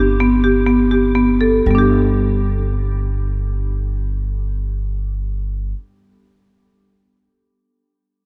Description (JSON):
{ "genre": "contemporary instrumental, chamber music in an uneven meter", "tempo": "free time", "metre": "none", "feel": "none", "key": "G major", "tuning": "A4 = 440 Hz", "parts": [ { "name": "marimba with medium hard mallets", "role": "arpeggios", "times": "0.0-5.8 s", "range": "G3 to A4", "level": "-18 LUFS", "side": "equal", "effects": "none" }, { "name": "upright bass", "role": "bass", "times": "0.0-5.7 s", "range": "G1", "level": "-22 LUFS", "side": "equal", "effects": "none" } ], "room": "wet cathedral reverb, RT60 5.8 s", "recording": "in a vast, echoing space", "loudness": "-17 LUFS", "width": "mono", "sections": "0.0-1.7 A section; 1.7-6.9 B section", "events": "slowing down 0.0-1.7", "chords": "0.0 G", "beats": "free time" }